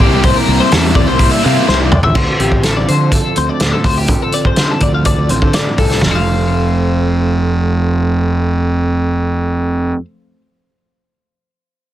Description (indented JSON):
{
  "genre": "math rock and midwest emo",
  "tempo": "124 BPM",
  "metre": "4/4",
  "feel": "straight",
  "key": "F major",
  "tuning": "A4 = 439 Hz",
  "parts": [
    { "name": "twelve-string electric guitar", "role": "arpeggios", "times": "0.0-10.0 s", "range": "G4 to F5", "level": "-18 LUFS", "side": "left 6 dB", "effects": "analog chorus, tape echo, plate reverb" },
    { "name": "biting overdriven guitar", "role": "riff", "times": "0.0-1.9 s", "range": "C3 to E4", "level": "-14 LUFS", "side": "right 1 dB", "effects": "none" },
    { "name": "fuzz picked electric bass", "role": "bass", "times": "0.0-9.9 s", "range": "F1 to D3", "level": "-16 LUFS", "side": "equal", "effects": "overdrive" },
    { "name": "loose indie drum kit", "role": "drums", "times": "0.0-6.1 s", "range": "crash cymbal, hi-hat, kick drum, snare drum, toms", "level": "-14 LUFS", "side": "equal", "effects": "none" },
    { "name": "mellow electric guitar", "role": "accompaniment", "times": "2.1-10.0 s", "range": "F2 to A4", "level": "-19 LUFS", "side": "right 6 dB", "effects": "none" }
  ],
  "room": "light reverb",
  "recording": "dense, heavily limited modern master",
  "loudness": "-11 LUFS",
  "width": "side -12 dB against mid",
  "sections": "0.0-2.2 A section; 2.2-6.0 B section; 6.0-9.9 C section",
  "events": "drum fill 1.7-2.2",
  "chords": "0.0 C7; 2.2 Dm7; 6.0 F",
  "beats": "| 0.24 0.72 1.20 1.68 | 2.16 2.64 3.12 3.61 | 4.09 4.57 5.06 5.54 | 6.03 6.51 6.99 7.48 | 7.96 8.45 8.93 9.41"
}